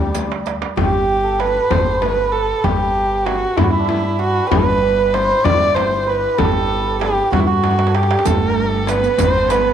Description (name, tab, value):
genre	Persian modal ensemble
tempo	64 BPM (dotted quarters)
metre	6/8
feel	straight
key	G dastgah mahur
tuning	A4 = 441 Hz
part	dark kamancheh	melody	0.0-9.7 s	E4 to D5	-18 LUFS	equal	slapback echo
part	upright bass	bass	0.0-9.7 s	G1 to G2	-21 LUFS	equal	none
part	warm duduk	drone	0.0-0.8 s	G3	-28 LUFS	right 1 dB	none
part	frame drum	percussion	0.1-9.7 s	none	-23 LUFS	left 10 dB	none
part	riq	percussion	0.1-0.5, 8.3-9.7 s	none	-31 LUFS	right 13 dB	none
part	tombak	percussion	0.2-9.7 s	none	-23 LUFS	right 3 dB	none
part	santur	second line	0.8-9.7 s	D4 to E5	-22 LUFS	right 9 dB	none
part	dark symphonic cello section	second line	8.3-9.7 s	A3 to C4	-23 LUFS	right 11 dB	none
room	moderate echo chamber reverb, RT60 2.1 s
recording	1960s-style stereo with parts hard left and right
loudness	-14 LUFS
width	side -9 dB against mid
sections	0.8-9.7 A section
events	drum fill 0.1-0.8, 7.6-8.3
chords	none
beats	| 0.77 1.71 | 2.64 3.58 | 4.52 5.45 | 6.39 7.33 | 8.26 9.20